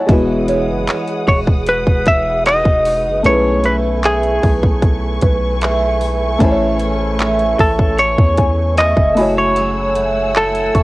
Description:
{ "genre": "contemporary R&B", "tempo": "76 BPM", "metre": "4/4", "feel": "straight", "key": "E major", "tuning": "A4 = 440 Hz", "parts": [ { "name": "felt-muted upright piano", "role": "accompaniment", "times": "0.0-10.8 s", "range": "G#3 to A5", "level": "-21 LUFS", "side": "left 1 dB", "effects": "cassette tape" }, { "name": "warm symphonic string section", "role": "sustained chords", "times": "0.0-10.8 s", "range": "A3 to E6", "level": "-25 LUFS", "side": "equal", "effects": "cassette tape" }, { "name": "picked steel-string acoustic guitar", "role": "arpeggios", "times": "0.1-10.8 s", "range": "B2 to G#4", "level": "-22 LUFS", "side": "right 4 dB", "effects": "cassette tape" }, { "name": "long sustained 808-style bass", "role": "bass", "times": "0.1-10.8 s", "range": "E1 to E2", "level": "-21 LUFS", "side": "equal", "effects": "none" }, { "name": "trap drum kit", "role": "drums", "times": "0.1-10.8 s", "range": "handclaps, hi-hat, kick drum", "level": "-15 LUFS", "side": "equal", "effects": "none" }, { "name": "soft synth bell", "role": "texture", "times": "0.5-10.8 s", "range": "B4 to C#6", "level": "-25 LUFS", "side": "equal", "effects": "chorus, phaser, cassette tape, analog delay" }, { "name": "semi-hollow electric guitar", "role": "melody", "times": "1.3-10.8 s", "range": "G#4 to E5", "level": "-15 LUFS", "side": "equal", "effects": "tremolo, cassette tape" } ], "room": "little or no reverb", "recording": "home recording on cassette", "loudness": "-12 LUFS", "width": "side -19 dB against mid", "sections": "0.1-10.8 A section", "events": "none", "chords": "0.1 Emaj9; 3.2 B13sus4; 6.4 Amaj7; 9.2 F#m9" }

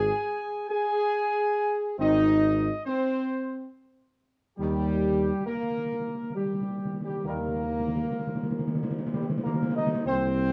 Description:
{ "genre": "classical", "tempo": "62-70 BPM", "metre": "3/4", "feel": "straight", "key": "unclear", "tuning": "A4 = 441 Hz", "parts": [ { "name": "dark trumpet section", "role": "melody", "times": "0.0-10.5 s", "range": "G4 to Ab5", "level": "-35 LUFS", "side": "equal", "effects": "none" }, { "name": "mellow French horn section", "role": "sustained chords", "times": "0.0-10.5 s", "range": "G3 to Ab4", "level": "-30 LUFS", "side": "equal", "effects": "none" }, { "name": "mellow tuba", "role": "bass", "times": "0.0-10.5 s", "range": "Ab1 to Eb2", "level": "-32 LUFS", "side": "equal", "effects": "none" }, { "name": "clear trombone section", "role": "sustained chords", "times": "2.0-10.5 s", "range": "Eb3 to Eb4", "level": "-33 LUFS", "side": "equal", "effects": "none" }, { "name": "timpani", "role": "percussion", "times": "4.6-10.0 s", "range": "Eb3", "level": "-34 LUFS", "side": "equal", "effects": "none" } ], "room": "moderate large studio reverb, RT60 1.2 s", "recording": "dark, warm production", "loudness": "-28 LUFS", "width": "mono", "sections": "0.0-10.1 A section", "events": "timpani fill 4.6-10.1", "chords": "0.0 Ab; 4.6 Eb" }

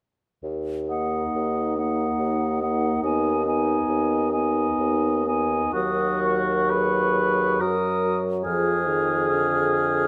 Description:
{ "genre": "classical, slow romantic movement for wind quintet", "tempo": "67 BPM", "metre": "3/4", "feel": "uneven beats, rubato", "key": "Eb minor", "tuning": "A4 = 440 Hz", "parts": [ { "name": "mellow bassoon", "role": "bass", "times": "0.4-10.1 s", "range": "Eb2 to Gb2", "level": "-28 LUFS", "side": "equal", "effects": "none" }, { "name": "hollow concert flute", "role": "melody", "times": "0.9-10.1 s", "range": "Gb5 to F6", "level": "-31 LUFS", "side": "equal", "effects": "none" }, { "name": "mellow oboe", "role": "second line", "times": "0.9-10.1 s", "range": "Gb4 to Eb5", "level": "-28 LUFS", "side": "equal", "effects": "none" }, { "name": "mellow clarinet", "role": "accompaniment", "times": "0.9-10.1 s", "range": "Eb4 to Bb4", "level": "-32 LUFS", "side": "equal", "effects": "none" }, { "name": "warm French horn", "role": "accompaniment", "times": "0.9-10.1 s", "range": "D3 to Cb4", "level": "-32 LUFS", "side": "equal", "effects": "none" } ], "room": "moderate recital hall reverb, RT60 1.6 s", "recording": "close, detailed microphones", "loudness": "-23 LUFS", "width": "mono", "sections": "0.4-5.7 A section; 5.7-10.1 B section", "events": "none", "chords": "0.4 Ebm; 3.0 Abm/Eb; 5.7 Ebm; 8.4 Bb7/F (rootless)" }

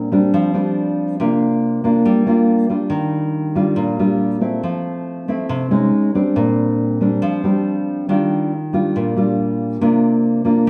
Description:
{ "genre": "bossa nova", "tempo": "139 BPM", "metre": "4/4", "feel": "straight", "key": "unclear", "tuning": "A4 = 436 Hz", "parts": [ { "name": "nylon-string guitar", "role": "solo", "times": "0.0-10.7 s", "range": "Bb2 to F4", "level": "-18 LUFS", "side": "equal", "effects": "none" } ], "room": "wet large studio reverb, RT60 1.4 s", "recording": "dark, warm production", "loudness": "-18 LUFS", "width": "mono", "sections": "0.0-10.7 A section", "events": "none", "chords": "0.0 Bb69; 1.2 C9sus4; 2.9 Ebmaj9; 4.6 Fmaj7; 5.9 Abmaj7#11; 6.4 Bb69; 8.1 Ebmaj9; 9.8 C9sus4" }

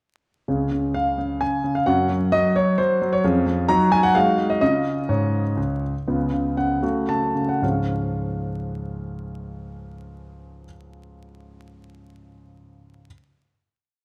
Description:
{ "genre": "classical-period piano sonatina", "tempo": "110-133 BPM", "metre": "3/4", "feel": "straight", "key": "Db major", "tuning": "A4 = 441 Hz", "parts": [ { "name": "clear grand piano", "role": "solo", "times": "0.5-13.1 s", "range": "Db2 to Bb5", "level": "-22 LUFS", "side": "equal", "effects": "none" } ], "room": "wet recital hall reverb, RT60 1.4 s", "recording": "close, detailed microphones, vinyl crackle", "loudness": "-22 LUFS", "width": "mono", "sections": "0.5-6.1 A section; 6.1-7.6 coda; 7.6-10.8 final chord", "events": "slowing down 3.9-7.6", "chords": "0.5 Db; 1.9 Gb5; 3.2 Db/F; 3.7 Ebm/Gb; 4.1 Ab5; 4.6 Db; 6.1 Db7; 6.8 Gbm/Db; 7.6 Db" }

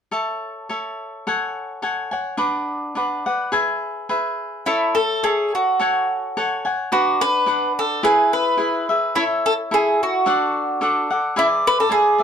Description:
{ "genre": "mexican folk, mariachi", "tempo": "107 BPM", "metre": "2/4", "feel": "rubato", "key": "A major", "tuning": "A4 = 443 Hz", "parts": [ { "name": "cavaquinho", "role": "accompaniment", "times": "0.1-12.2 s", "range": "D4 to A5", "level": "-21 LUFS", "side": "left 1 dB", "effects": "none" }, { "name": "mandolin", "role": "melody", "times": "4.7-12.2 s", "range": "E4 to B4", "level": "-18 LUFS", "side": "equal", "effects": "none" } ], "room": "moderate studio ambience, RT60 0.5 s", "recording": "dark, warm production", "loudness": "-18 LUFS", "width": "side -7 dB against mid", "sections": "0.1-4.7 A section; 4.7-12.2 B section", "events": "none", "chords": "0.1 A; 1.3 F#madd9/A; 2.4 Bm; 3.5 E; 4.7 A; 5.8 F#madd9; 6.9 Bm; 8.0 E; 9.2 A; 10.3 D; 11.4 E7" }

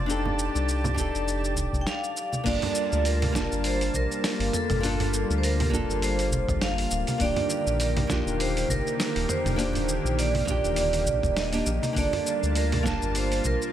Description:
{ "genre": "sunset chillout", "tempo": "101 BPM", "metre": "4/4", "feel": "swing 56% on 16ths", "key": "G minor", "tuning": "A4 = 440 Hz", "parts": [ { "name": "nylon-string guitar", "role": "accompaniment", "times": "0.0-13.7 s", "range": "Bb3 to A5", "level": "-31 LUFS", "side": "left 1 dB", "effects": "auto-pan, tape echo" }, { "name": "lush unison pad", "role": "sustained chords", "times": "0.0-13.7 s", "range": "D3 to A5", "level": "-32 LUFS", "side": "left 1 dB", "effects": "chorus" }, { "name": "round analog bass", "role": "bass", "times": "0.0-13.6 s", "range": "D1 to D2", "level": "-28 LUFS", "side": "equal", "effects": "none" }, { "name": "dusty soul sampler-style drum kit", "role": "drums", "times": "0.1-13.7 s", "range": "crash cymbal, hi-hat, shaker, snare drum, toms", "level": "-32 LUFS", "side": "equal", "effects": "none" }, { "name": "congas", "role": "percussion", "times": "0.3-13.6 s", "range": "none", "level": "-34 LUFS", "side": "right 2 dB", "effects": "dub echo" }, { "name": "electronic kick drum", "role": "drums", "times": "1.0-13.6 s", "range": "none", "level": "-32 LUFS", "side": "equal", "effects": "none" }, { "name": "vibraphone with medium hard mallets", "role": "melody", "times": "1.8-13.7 s", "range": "A4 to G5", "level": "-29 LUFS", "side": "right 3 dB", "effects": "tape echo" } ], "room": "light reverb", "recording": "echo-heavy mix", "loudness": "-23 LUFS", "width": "side -11 dB against mid", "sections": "0.0-2.5 A section; 2.5-13.7 B section", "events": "none", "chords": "0.1 F13; 2.5 Gm9; 7.2 Ebmaj7; 12.0 Gm9" }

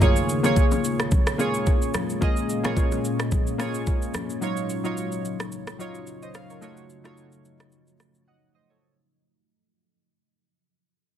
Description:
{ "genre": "amapiano", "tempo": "109 BPM", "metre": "4/4", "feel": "swing 55% on 16ths", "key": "Bb minor", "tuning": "A4 = 440 Hz", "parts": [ { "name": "warm analog keys", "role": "accompaniment", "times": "0.0-9.0 s", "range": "Gb3 to Gb5", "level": "-27 LUFS", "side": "equal", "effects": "chorus" }, { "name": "deep dark ambient pad", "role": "sustained chords", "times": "0.0-8.8 s", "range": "Bb2 to F4", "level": "-31 LUFS", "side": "left 2 dB", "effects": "chorus, built-in reverb, sidechain pumping" }, { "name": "smooth R&B drum kit", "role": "drums", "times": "0.0-8.3 s", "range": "kick drum, rim click, shaker", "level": "-23 LUFS", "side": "equal", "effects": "overdrive, soft clipping on snare" }, { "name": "congas and bongos", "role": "percussion", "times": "0.0-4.3 s", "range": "none", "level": "-33 LUFS", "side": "left 4 dB", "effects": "none" } ], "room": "light reverb, digital ambience", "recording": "dense, heavily limited modern master", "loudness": "-22 LUFS", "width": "side -10 dB against mid", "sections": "0.0-8.8 A section", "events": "fade-out 0.0-8.8; break 8.3-8.8", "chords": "0.0 Bbm7; 4.4 Ebm9; 6.6 F7b9b13" }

